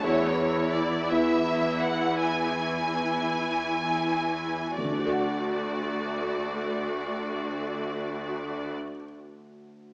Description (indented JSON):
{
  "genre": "cinematic, emotional film score for orchestra",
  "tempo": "43-57 BPM (dotted quarters)",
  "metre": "6/8",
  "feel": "rubato",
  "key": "D lydian",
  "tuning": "A4 = 440 Hz",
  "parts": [
    { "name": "rich symphonic violin section", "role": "melody", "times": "0.0-8.7 s", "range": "C#5 to G#5", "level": "-33 LUFS", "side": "equal", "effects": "none" },
    { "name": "rich studio viola section", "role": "accompaniment", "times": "0.0-8.7 s", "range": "E3 to F#4", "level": "-33 LUFS", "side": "equal", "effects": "none" },
    { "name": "warm concert grand piano", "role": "accompaniment", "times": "0.0-9.9 s", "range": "D2 to F#5", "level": "-34 LUFS", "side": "equal", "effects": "none" },
    { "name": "rich symphonic cello section", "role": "bass", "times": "0.0-8.7 s", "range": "D2 to E2", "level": "-36 LUFS", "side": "equal", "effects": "none" }
  ],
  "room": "moderate scoring stage reverb, RT60 1.8 s",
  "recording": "small speaker sound",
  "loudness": "-28 LUFS",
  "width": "mono",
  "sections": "0.0-4.8 A section; 4.8-9.9 B section",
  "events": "slowing down 0.0-4.8",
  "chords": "0.0 E; 4.8 D",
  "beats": "| 0.04 1.10 | 2.21 3.43 | 4.78 6.12 | 7.46 8.81"
}